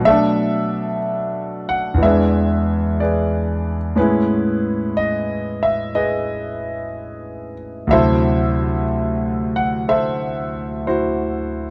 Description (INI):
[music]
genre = solo jazz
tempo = 61 BPM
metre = 4/4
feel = swing 67% on 8ths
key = unclear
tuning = A4 = 441 Hz
[part]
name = warm concert grand piano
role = solo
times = 0.0-11.7 s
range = D2 to F#5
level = -20 LUFS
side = equal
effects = none
[sound]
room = light reverb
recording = dark, warm production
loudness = -19 LUFS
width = mono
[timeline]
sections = 0.0-11.7 A section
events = none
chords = 0.0 Bm7; 2.0 E7; 4.0 Amaj9; 7.9 D9